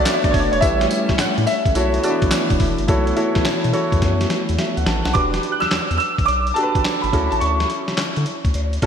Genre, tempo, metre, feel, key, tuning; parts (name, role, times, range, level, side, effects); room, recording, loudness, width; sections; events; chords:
R&B, new jack swing; 106 BPM; 4/4; swing 66% on 16ths; E dorian; A4 = 442 Hz
clear concert grand piano; melody; 0.0-7.9 s; C#5 to F#6; -21 LUFS; right 1 dB; analog chorus
warm baby grand piano; accompaniment; 0.0-8.9 s; C#4 to A5; -23 LUFS; right 1 dB
brassy analog pad; sustained chords; 0.0-5.1 s; E3 to D4; -26 LUFS; equal; chorus, tremolo
round analog bass; bass; 0.0-8.8 s; E1 to D3; -23 LUFS; equal
dusty soul sampler-style drum kit; drums; 0.1-8.9 s; handclaps, hi-hat, kick drum, snare drum, tambourine; -22 LUFS; equal; gated reverb
cowbell; percussion; 0.1-8.7 s; -35 LUFS; left 3 dB
moderate lush hall reverb, RT60 3.0 s; bright 1980s-style digital production; -16 LUFS; side -7 dB against mid
0.0-2.9 A section; 2.9-5.2 B section; 5.2-8.9 C section
drum fill 4.0-5.2
0.0 Bm7; 0.6 A7; 1.8 B7sus4; 5.2 Em7; 7.1 Dmaj7